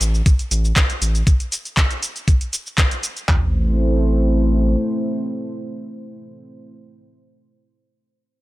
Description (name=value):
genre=acid house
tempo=119 BPM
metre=4/4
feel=straight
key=A minor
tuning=A4 = 440 Hz
part: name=dark analog pad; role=sustained chords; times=0.0-6.7 s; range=A3 to C5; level=-22 LUFS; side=equal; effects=chorus, sidechain pumping
part: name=round analog bass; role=bass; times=0.0-4.8 s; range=A1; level=-18 LUFS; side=equal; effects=sidechain pumping
part: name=booming analog drum machine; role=drums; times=0.0-3.3 s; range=handclaps, hi-hat, shaker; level=-22 LUFS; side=equal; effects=none
part: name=clean 12-bit digital drum machine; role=drums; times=0.3-3.4 s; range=handclaps, kick drum, toms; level=-16 LUFS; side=equal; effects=none
room=little or no reverb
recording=none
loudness=-16 LUFS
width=side -18 dB against mid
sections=0.0-3.3 A section; 3.3-7.3 B section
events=none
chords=0.0 Am